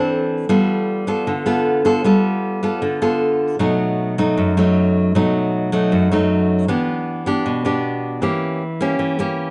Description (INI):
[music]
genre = bossa nova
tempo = 155 BPM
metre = 4/4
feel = straight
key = unclear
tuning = A4 = 436 Hz
[part]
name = nylon-string guitar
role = solo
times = 0.0-9.5 s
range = F#2 to A4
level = -19 LUFS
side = equal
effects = none
[sound]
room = moderate echo chamber reverb, RT60 1.7 s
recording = dark, warm production, nothing above 11.0 kHz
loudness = -19 LUFS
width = mono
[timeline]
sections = 0.0-9.5 A section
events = none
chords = 0.5 G9; 3.6 B7; 6.7 Em7; 8.2 Edim7